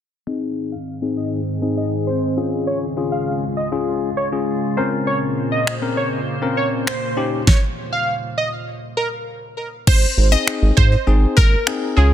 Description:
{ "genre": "dance-pop", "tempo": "100 BPM", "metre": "4/4", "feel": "straight", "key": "Ab major", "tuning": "A4 = 440 Hz", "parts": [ { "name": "plucky unison lead", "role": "melody", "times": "0.3-9.1 s", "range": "Bb4 to F5", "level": "-24 LUFS", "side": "right 2 dB", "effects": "sidechain pumping, low-pass filter, digital delay" }, { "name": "bell-like tine electric piano", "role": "accompaniment", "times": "0.3-12.1 s", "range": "C4 to Bb4", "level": "-23 LUFS", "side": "left 5 dB", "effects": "sidechain pumping, low-pass filter" }, { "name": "glassy FM pad", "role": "sustained chords", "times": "0.6-7.5 s", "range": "Db2 to Eb5", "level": "-25 LUFS", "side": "right 1 dB", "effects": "ensemble chorus, built-in reverb, sidechain pumping, low-pass filter" }, { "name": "pop drum kit", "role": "drums", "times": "5.7-11.8 s", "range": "crash cymbal, finger snaps, kick drum, snare drum", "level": "-17 LUFS", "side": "equal", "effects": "soft clipping on snare" }, { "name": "glassy wavetable pluck", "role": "melody", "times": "9.9-12.1 s", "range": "Ab4 to Eb5", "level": "-21 LUFS", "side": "right 1 dB", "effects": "chorus, digital delay" }, { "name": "round analog bass", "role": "bass", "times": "9.9-12.1 s", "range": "Ab1 to Ab2", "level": "-15 LUFS", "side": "equal", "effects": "sidechain pumping" } ], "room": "light reverb, digital ambience", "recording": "dense, heavily limited modern master", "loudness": "-17 LUFS", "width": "side -10 dB against mid", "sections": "0.3-9.9 A section; 9.9-12.1 B section", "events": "filter sweep 0.3-9.9", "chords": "0.3 Ab; 2.4 Db; 4.8 Bbmadd9; 7.2 Eb7; 9.9 Ab" }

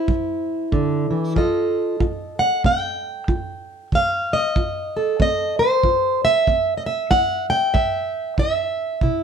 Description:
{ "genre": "acoustic country blues, solo or duo", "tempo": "94 BPM", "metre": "4/4", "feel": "swing 60% on 8ths", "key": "unclear", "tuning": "A4 = 438 Hz", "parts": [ { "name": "fingerpicked plugged-in steel-string acoustic guitar", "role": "melody", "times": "0.0-9.2 s", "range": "G2 to G5", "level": "-19 LUFS", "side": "right 1 dB", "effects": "plate reverb" }, { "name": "kick drum", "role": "drums", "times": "0.1-9.2 s", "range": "none", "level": "-24 LUFS", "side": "right 2 dB", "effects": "none" } ], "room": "moderate studio reverb, RT60 0.6 s", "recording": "none", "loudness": "-18 LUFS", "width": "side -7 dB against mid", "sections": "0.0-9.2 A section", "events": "none", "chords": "0.0 C; 1.4 F7; 6.5 C" }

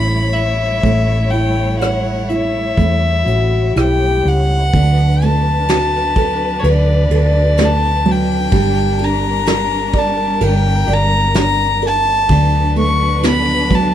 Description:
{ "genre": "acoustic folk-pop ballad", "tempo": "63 BPM", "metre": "4/4", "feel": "straight", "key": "D major", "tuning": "A4 = 441 Hz", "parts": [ { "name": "rich violin", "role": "melody", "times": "0.0-13.9 s", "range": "C#5 to C#6", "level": "-18 LUFS", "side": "left 2 dB", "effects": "none" }, { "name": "felt-muted upright piano", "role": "accompaniment", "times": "0.0-13.9 s", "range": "D3 to D5", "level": "-20 LUFS", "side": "right 3 dB", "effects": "none" }, { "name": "warm chamber string section", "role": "sustained chords", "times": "0.0-13.9 s", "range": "D3 to C#5", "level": "-23 LUFS", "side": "left 2 dB", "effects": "none" }, { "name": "hollow-body short-scale fingered electric bass", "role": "bass", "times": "0.0-13.9 s", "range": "G1 to E2", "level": "-16 LUFS", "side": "equal", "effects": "none" }, { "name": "soft brush drum kit", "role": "drums", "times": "0.4-13.9 s", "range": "hi-hat, kick drum, ride cymbal, rim click, snare drum", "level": "-22 LUFS", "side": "equal", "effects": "none" }, { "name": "warm French horn", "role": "second line", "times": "3.2-4.7 s", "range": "F#4 to G4", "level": "-19 LUFS", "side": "left 4 dB", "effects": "none" } ], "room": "small room ambience", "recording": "none", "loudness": "-12 LUFS", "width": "side -10 dB against mid", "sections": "0.0-4.7 A section; 4.7-13.9 B section", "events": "none", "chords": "0.0 A7; 4.7 D6; 8.5 Gm; 12.3 D6" }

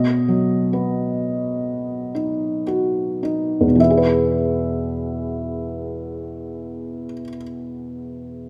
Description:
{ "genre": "classical, lyrical solo piano", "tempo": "53-70 BPM", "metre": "4/4", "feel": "rubato", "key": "E major", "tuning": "A4 = 440 Hz", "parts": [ { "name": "felt-muted upright piano", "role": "solo", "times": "0.0-8.5 s", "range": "E2 to E5", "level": "-22 LUFS", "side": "equal", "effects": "none" } ], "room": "moderate recital hall reverb, RT60 1.7 s", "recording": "none", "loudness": "-21 LUFS", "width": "mono", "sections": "0.0-3.8 A section; 3.8-8.1 B section", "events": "slowing down 0.0-3.8", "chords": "0.0 B; 3.8 E" }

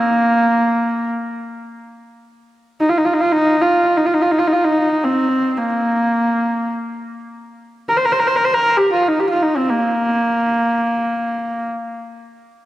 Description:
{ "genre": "mongolian traditional", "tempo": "free time", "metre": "none", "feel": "none", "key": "Bb zhi mode", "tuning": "A4 = 439 Hz", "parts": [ { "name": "clear horsehead fiddle", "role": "solo", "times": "0.0-11.7 s", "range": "Bb3 to C5", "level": "-15 LUFS", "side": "equal", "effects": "analog delay" } ], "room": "moderate plate reverb, RT60 3.0 s", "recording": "echo-heavy mix, cassette tape", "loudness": "-15 LUFS", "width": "side -15 dB against mid", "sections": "0.0-2.3 A section; 2.3-12.6 A section", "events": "none", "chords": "none" }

